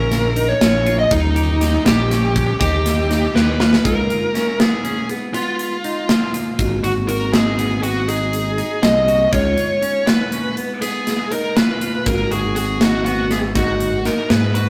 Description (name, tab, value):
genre	progressive instrumental, band music in an uneven meter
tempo	241 BPM (eighths)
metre	11/8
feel	straight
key	G# dorian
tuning	A4 = 440 Hz
part	bluesy overdriven lead guitar	melody	0.0-14.7 s	D#4 to D#5	-23 LUFS	equal	distortion, tape echo
part	mellow tine electric piano	accompaniment	0.0-14.7 s	E#3 to F#4	-32 LUFS	equal	none
part	clean electric guitar	arpeggios	0.0-14.7 s	B3 to G#4	-29 LUFS	equal	spring reverb
part	smooth gliding synth bass	bass	0.0-14.7 s	G#1 to G#2	-23 LUFS	equal	none
part	tight metal drum kit	drums	0.1-14.7 s	hi-hat, kick drum, snare drum	-22 LUFS	equal	none
room	moderate stone room reverb, RT60 1.3 s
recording	rough rehearsal-room recording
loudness	-18 LUFS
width	mono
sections	0.0-3.9 A section; 3.9-14.7 B section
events	drum fill 3.4-3.9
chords	0.0 A#m; 1.1 D#7; 3.9 C#7; 6.6 G#m7; 9.3 C#7; 12.1 G#m7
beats	0.12 0.37 0.61 0.86 | 1.11 1.36 1.61 1.86 2.11 2.36 2.61 2.86 3.10 3.35 3.60 | 3.85 4.10 4.35 4.60 4.85 5.10 5.35 5.59 5.84 6.09 6.34 | 6.59 6.84 7.09 7.34 7.59 7.84 8.09 8.33 8.58 8.83 9.08 | 9.33 9.58 9.83 10.08 10.32 10.57 10.82 11.07 11.32 11.57 11.82 | 12.07 12.31 12.56 12.81 13.06 13.31 13.56 13.80 14.05 14.30 14.55